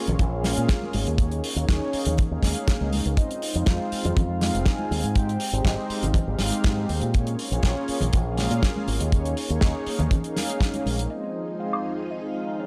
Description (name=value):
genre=nu-disco, nu disco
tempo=121 BPM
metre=4/4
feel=straight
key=unclear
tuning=A4 = 440 Hz
part: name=warm analog pad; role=accompaniment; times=0.0-12.7 s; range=Ab3 to F5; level=-31 LUFS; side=equal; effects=chorus
part: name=fingered electric bass with an envelope filter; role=bass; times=0.1-11.1 s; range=F1 to Bb2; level=-29 LUFS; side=equal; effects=transformer saturation
part: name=damped 70s drum kit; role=drums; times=0.1-12.7 s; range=hi-hat, snare drum, woodblock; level=-33 LUFS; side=equal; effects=low-pass filter on hats, studio reverb, low-pass filter on snare, low-pass filter on perc, low-pass filter on room
part: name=congas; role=percussion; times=0.1-11.0 s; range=none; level=-34 LUFS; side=equal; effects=none
part: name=kick drum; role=drums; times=0.2-10.7 s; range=none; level=-24 LUFS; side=equal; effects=studio reverb
part: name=soft octave-layered synth lead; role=melody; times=3.2-6.6, 11.1-12.7 s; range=Db5 to Ab5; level=-37 LUFS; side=equal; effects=chorus, phaser, tape echo
part: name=string machine, full ensemble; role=sustained chords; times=11.1-12.7 s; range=F3 to Ab4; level=-37 LUFS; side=equal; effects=phaser, ensemble chorus, sidechain pumping
room=light reverb, small room ambience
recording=dry, gritty hardware recording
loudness=-25 LUFS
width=mono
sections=0.0-11.1 A section; 11.1-12.7 B section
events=filter sweep on string machine 11.1-12.7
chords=0.0 Bbm7; 1.2 Eb7sus4; 3.2 Fm7; 5.2 Abmaj7; 7.1 Bbm7; 9.1 Eb7sus4; 11.1 Fm7